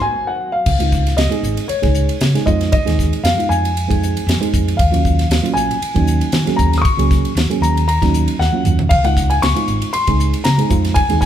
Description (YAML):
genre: electric jazz fusion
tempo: 116 BPM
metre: 4/4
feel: swing 54% on 16ths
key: unclear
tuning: A4 = 441 Hz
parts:
  - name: dark concert grand piano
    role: melody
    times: 0.0-11.3 s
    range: C5 to Eb6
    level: -20 LUFS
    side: left 3 dB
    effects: none
  - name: chorused pulse-width pad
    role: sustained chords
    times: 0.0-0.7 s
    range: Eb3 to Gb4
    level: -34 LUFS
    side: right 1 dB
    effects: none
  - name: hollow-body short-scale fingered electric bass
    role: bass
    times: 0.7-11.3 s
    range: Ab1 to Eb3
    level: -17 LUFS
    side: equal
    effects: none
  - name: tight funk drum kit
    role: drums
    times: 0.7-11.3 s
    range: crash cymbal, hi-hat, kick drum, ride cymbal, snare drum, splash cymbal, toms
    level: -19 LUFS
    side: equal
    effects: none
  - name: reed electric piano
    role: accompaniment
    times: 0.8-11.3 s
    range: C3 to Ab4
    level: -21 LUFS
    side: right 5 dB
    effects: overdrive
room: moderate large studio reverb, RT60 1.4 s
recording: band playing live in one room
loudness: -13 LUFS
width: side -10 dB against mid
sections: 0.7-11.3 A section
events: band accent 0.0-0.7; drum fill 0.1-0.7, 8.4-8.9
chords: 0.0 Ab7; 0.7 Dbmaj7; 2.5 Fm7; 4.8 Ebm9; 8.9 Dbmaj7; 10.7 Fm7